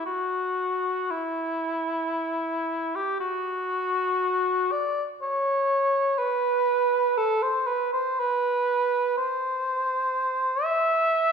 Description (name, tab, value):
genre	classical, free, expressive piece for unaccompanied cor anglais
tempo	59 BPM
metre	3/4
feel	uneven beats, rubato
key	unclear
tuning	A4 = 439 Hz
part	mellow cor anglais	solo	0.0-11.3 s	E4 to E5	-23 LUFS	equal	none
room	wet recital hall reverb, RT60 1.5 s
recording	recorded in a church or concert hall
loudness	-23 LUFS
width	side -6 dB against mid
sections	0.0-11.3 A section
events	none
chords	none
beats	| 0.06 1.11 2.17 | 3.21 4.23 5.22 | 6.20 7.16 8.18 | 9.18 10.14 11.14